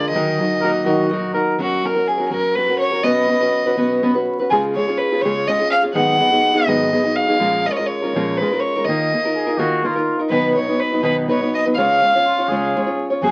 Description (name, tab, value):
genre	mexican folk, mariachi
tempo	82 BPM (dotted quarters)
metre	6/8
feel	straight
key	F# major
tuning	A4 = 440 Hz
part	warm violin	melody	0.0-13.3 s	F#4 to F#5	-21 LUFS	equal	none
part	nylon-string guitar	accompaniment	0.0-13.3 s	G#2 to C#5	-22 LUFS	equal	none
part	concert harp	arpeggios	0.0-3.8, 13.2-13.3 s	D3 to Ab5	-33 LUFS	equal	none
part	upright bass	bass	0.1-13.3 s	F#1 to F#2	-42 LUFS	equal	none
part	warm trumpet	second line	0.6-1.6, 9.4-13.1 s	E#4 to Bb4	-25 LUFS	equal	none
room	moderate studio reverb, RT60 0.7 s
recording	very old 78 rpm record, vinyl crackle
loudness	-18 LUFS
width	mono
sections	0.0-1.6 A section; 1.6-13.3 B section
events	none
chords	0.1 Ebm; 1.6 F#; 3.0 Bsus2; 4.5 C#; 5.9 G#m7; 7.4 A#m7; 8.9 D#sus2; 10.3 B; 11.8 C#